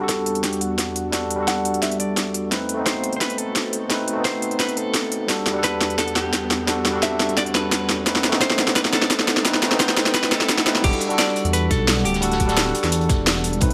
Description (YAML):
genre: liquid drum and bass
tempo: 173 BPM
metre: 4/4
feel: straight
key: E minor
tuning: A4 = 441 Hz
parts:
  - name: tine electric piano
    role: accompaniment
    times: 0.0-13.7 s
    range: G3 to F#5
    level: -27 LUFS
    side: equal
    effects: none
  - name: airy breathy pad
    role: sustained chords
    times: 0.0-13.7 s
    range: E2 to A5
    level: -34 LUFS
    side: equal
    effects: chorus
  - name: riser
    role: sound effects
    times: 5.1-10.8 s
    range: none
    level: -36 LUFS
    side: equal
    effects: none
  - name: clean electric guitar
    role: melody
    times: 0.1-12.7 s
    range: F#4 to F#5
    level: -29 LUFS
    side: equal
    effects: low-pass filter, digital delay
  - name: drum and bass drum kit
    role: drums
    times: 0.1-13.7 s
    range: crash cymbal, hi-hat, snare drum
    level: -23 LUFS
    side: equal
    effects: small room reverb
  - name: electronic kick drum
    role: drums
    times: 0.1-13.7 s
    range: none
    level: -27 LUFS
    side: equal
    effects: none
  - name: dark detuned saw bass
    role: bass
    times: 10.8-13.7 s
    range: D1 to E2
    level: -25 LUFS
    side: equal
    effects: none
  - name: crunchy breakbeat drum kit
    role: drums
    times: 10.8-13.7 s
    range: hi-hat, snare drum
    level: -32 LUFS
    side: equal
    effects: high-pass filter on hats, small room reverb, high-pass filter on snare, high-pass filter on room
room: light reverb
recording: none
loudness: -21 LUFS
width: mono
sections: 0.0-10.8 A section; 10.8-13.7 B section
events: build-up 0.0-10.8; drum fill 0.0-10.8; filter sweep on clean electric guitar 0.0-10.8; drop 10.8-13.7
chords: 0.0 Em11; 2.5 B7b9; 5.3 Em11; 8.1 B7b9; 10.8 Em11